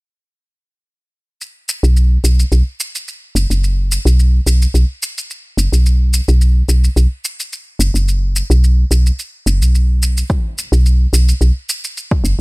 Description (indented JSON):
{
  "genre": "organic downtempo",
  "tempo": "108 BPM",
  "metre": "4/4",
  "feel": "swing 54% on 16ths",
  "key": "unclear",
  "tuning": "A4 = 441 Hz",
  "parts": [
    { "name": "shaker", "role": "drums", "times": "1.4-12.4 s", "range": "none", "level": "-22 LUFS", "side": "equal", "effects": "studio reverb" },
    { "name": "woody FM bass", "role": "bass", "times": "1.8-12.4 s", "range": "F#1 to B1", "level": "-11 LUFS", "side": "equal", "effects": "none" },
    { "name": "electronic kick drum", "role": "drums", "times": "10.3-12.2 s", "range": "none", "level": "-15 LUFS", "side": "equal", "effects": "studio reverb" }
  ],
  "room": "little or no reverb",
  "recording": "bright 1980s-style digital production",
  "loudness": "-12 LUFS",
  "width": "side -26 dB against mid",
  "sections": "1.4-12.4 A section",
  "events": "filter sweep on FM bass 1.4-12.4",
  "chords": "none"
}